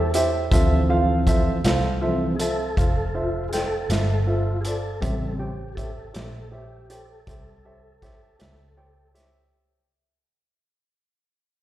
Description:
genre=slow blues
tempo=53 BPM (dotted quarters)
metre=12/8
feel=straight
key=unclear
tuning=A4 = 438 Hz
part: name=dark grand piano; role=accompaniment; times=0.0-9.4 s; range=E4 to G5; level=-26 LUFS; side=right 2 dB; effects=slapback echo
part: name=mellow tonewheel organ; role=sustained chords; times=0.0-9.1 s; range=C#3 to A4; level=-28 LUFS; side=left 1 dB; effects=slow rotary speaker, chorus vibrato
part: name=vintage muted fingered electric bass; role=bass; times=0.0-9.5 s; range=F1 to E2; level=-25 LUFS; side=equal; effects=none
part: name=vintage drum kit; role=drums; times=0.1-9.3 s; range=hi-hat, kick drum, snare drum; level=-25 LUFS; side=equal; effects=none
room=light reverb, small room ambience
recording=live gig heard through the venue's PA, recital hall reverb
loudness=-20 LUFS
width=side -14 dB against mid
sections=0.0-9.5 A section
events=fade-out 0.0-9.5; grand piano fill 0.0-0.5; tonewheel organ solo 0.0-9.5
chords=0.0 A7#9; 0.5 Dm9; 5.0 A7#9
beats=| 0.52 1.65 2.77 3.90 | 5.03 6.15 7.28 8.40

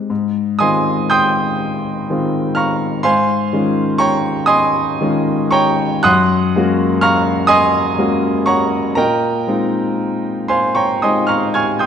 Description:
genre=classical, impressionist solo piano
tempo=40 BPM (dotted quarters)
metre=6/8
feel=uneven beats, rubato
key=unclear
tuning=A4 = 440 Hz
part: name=clear grand piano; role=solo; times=0.0-11.9 s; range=Gb2 to Ab6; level=-13 LUFS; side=equal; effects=none
room=moderate scoring stage reverb, RT60 1.9 s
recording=none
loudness=-13 LUFS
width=side -8 dB against mid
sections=0.1-11.9 A section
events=none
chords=0.1 Dbmaj9/Ab; 6.1 Gbadd9; 9.0 Bbm11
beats=| 0.10 1.62 | 3.07 4.49 | 6.06 7.51 | 8.98 10.51

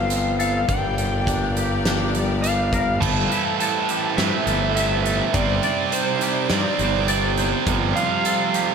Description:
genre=post-rock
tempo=103 BPM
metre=4/4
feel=straight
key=unclear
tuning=A4 = 438 Hz
part: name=overdriven slide guitar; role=melody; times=0.0-8.7 s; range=C5 to A5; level=-25 LUFS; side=left 1 dB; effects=ping-pong delay
part: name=bright studio string section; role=sustained chords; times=0.0-8.7 s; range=G3 to D5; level=-31 LUFS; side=left 2 dB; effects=none
part: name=twangy electric guitar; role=arpeggios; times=0.0-8.7 s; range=G3 to F5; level=-28 LUFS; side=left 3 dB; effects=ensemble chorus, ping-pong delay
part: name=fuzz fingered electric bass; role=bass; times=0.0-7.9 s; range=G1 to G2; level=-24 LUFS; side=equal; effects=overdrive
part: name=big rock drum kit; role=drums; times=0.1-8.7 s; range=crash cymbal, hi-hat, kick drum, snare drum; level=-27 LUFS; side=equal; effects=none
part: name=tight distorted guitar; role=riff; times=3.0-8.7 s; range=F2 to C4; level=-22 LUFS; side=right 11 dB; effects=distortion
room=moderate cathedral reverb, RT60 4.7 s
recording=dreamy mix soaked in reverb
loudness=-18 LUFS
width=side -6 dB against mid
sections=0.0-3.0 A section; 3.0-8.7 B section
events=none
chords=0.0 F/G; 0.7 Gm; 3.0 Am/G; 5.3 Cmadd9/G; 7.7 F/G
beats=0.11 | 0.69 1.27 1.86 2.44 | 3.02 3.60 4.18 4.76 | 5.35 5.93 6.51 7.09 | 7.67 8.25

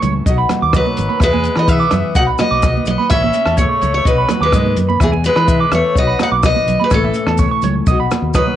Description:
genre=highlife guitar band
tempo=126 BPM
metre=4/4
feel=straight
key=unclear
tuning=A4 = 440 Hz
part: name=nylon-string guitar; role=accompaniment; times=0.0-8.6 s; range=E2 to G#4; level=-24 LUFS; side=left 9 dB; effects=cassette tape
part: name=electric guitar at the edge of break-up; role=arpeggios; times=0.0-8.5 s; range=C#5 to D6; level=-20 LUFS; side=right 6 dB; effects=cassette tape, analog delay
part: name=fingered electric bass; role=bass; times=0.0-8.4 s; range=G#1 to E3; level=-18 LUFS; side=left 1 dB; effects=none
part: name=compact cocktail drum kit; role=drums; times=0.0-8.5 s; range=hi-hat, kick drum, rim click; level=-18 LUFS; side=left 1 dB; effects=cassette tape
part: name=congas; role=percussion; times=0.0-8.6 s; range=none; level=-22 LUFS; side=right 9 dB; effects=none
part: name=maracas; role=percussion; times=0.0-8.5 s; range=none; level=-34 LUFS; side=left 13 dB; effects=none
part: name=picked steel-string acoustic guitar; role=melody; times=0.8-8.6 s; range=G#4 to F#5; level=-18 LUFS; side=left 2 dB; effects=cassette tape
part: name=growling tenor saxophone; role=second line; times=0.8-8.6 s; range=E3 to D#4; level=-26 LUFS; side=left 8 dB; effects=cassette tape
room=light reverb, small room reverb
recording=home recording on cassette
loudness=-12 LUFS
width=side -11 dB against mid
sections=0.0-8.6 A section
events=none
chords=0.3 B; 1.2 E; 2.2 B; 3.1 A; 4.1 B; 5.0 E; 6.0 B; 6.9 A; 7.9 B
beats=0.27 0.74 | 1.22 1.69 2.16 2.64 | 3.11 3.59 4.06 4.54 | 5.01 5.49 5.97 6.44 | 6.92 7.39 7.87 8.35

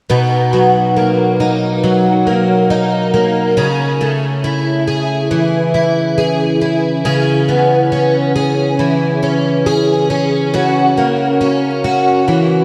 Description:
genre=dream pop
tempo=69 BPM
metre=4/4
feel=straight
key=B major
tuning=A4 = 440 Hz
part: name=picked plugged-in twelve-string acoustic guitar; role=arpeggios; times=0.1-12.6 s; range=B2 to G#4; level=-14 LUFS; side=equal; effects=ensemble chorus, digital delay
room=wet lush hall reverb, RT60 2.7 s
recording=dreamy mix soaked in reverb, vinyl crackle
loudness=-14 LUFS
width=mono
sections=0.1-12.6 A section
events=none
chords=0.1 Bmaj7; 3.6 Amaj7/C#; 7.1 C#m7; 10.5 F#7/C#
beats=| 0.10 0.97 1.84 2.71 | 3.58 4.45 5.32 6.19 | 7.06 7.93 8.79 9.66 | 10.53 11.40 12.27

